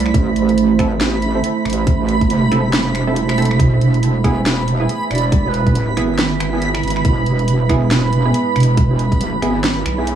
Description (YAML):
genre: deep dubstep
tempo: 139 BPM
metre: 4/4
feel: swing 59% on 16ths, half-time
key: unclear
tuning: A4 = 438 Hz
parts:
  - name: breathy bright low ney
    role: melody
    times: 0.0-0.1, 5.1-5.9 s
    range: B4 to D5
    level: -30 LUFS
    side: left 2 dB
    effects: dub echo
  - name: deep dark ambient pad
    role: sustained chords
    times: 0.0-10.2 s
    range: G#3 to C5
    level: -21 LUFS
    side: right 4 dB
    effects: chorus, built-in reverb
  - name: wobble bass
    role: bass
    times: 0.0-10.2 s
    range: E1 to C2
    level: -17 LUFS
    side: right 1 dB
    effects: chorus
  - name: garage drum kit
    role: drums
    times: 0.0-10.2 s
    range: finger snaps, hi-hat, snare drum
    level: -22 LUFS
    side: equal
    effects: overdrive
  - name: backwards swelling texture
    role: texture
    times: 0.0-10.2 s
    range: B5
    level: -24 LUFS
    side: right 3 dB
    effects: built-in reverb
  - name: electronic kick drum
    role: drums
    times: 0.1-9.2 s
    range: none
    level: -16 LUFS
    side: equal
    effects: overdrive
  - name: filtered dub chord stab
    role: stabs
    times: 0.8-10.0 s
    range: B3 to A4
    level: -24 LUFS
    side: right 3 dB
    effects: chorus, dub echo
room: moderate spring reverb, RT60 2.0 s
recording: dry, gritty hardware recording, small room ambience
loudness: -14 LUFS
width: side -9 dB against mid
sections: 0.0-10.2 A section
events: none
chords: 0.0 Am; 3.6 E